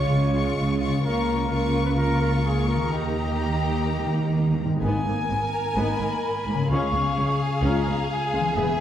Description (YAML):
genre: cinematic, heroic adventure film score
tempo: 128 BPM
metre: 4/4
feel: straight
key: G# dorian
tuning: A4 = 443 Hz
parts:
  - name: rich studio violin section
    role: melody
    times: 0.0-8.8 s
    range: E5 to C#6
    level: -32 LUFS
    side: left 2 dB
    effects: none
  - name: warm symphonic violin section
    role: second line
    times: 0.0-8.8 s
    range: E#4 to A#4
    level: -32 LUFS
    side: left 2 dB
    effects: none
  - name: warm symphonic viola section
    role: accompaniment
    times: 0.0-8.8 s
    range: G#3 to C#4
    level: -32 LUFS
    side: equal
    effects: none
  - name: concert harp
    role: arpeggios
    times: 0.0-8.8 s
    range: G#2 to A#4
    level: -30 LUFS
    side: left 4 dB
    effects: none
  - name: warm trumpet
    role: stabs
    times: 0.0-4.4 s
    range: D#4 to C#5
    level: -29 LUFS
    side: equal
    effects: none
  - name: rich symphonic cello section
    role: bass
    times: 0.0-8.7 s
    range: C#2 to D#3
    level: -29 LUFS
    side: right 2 dB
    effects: none
  - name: rich symphonic double bass section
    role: bass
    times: 0.0-8.7 s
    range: E1 to D#2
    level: -28 LUFS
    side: right 1 dB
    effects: none
  - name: timpani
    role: percussion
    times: 2.9-5.5 s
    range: G#2 to D#3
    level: -30 LUFS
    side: right 1 dB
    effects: none
  - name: silver concert flute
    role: second line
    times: 4.8-8.8 s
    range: G#5 to C#6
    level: -28 LUFS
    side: equal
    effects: none
  - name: mellow French horn section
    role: sustained chords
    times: 4.8-8.7 s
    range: G#3 to G#4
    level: -31 LUFS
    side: left 3 dB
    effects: none
room: wet scoring stage reverb, RT60 1.7 s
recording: heard from further back in the room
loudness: -21 LUFS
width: side -10 dB against mid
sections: 0.0-4.8 A section; 4.8-8.8 A section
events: timpani fill 2.9-4.8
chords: 0.0 C#; 1.0 A#m/C#; 2.9 D#; 4.8 G#madd9; 6.7 C#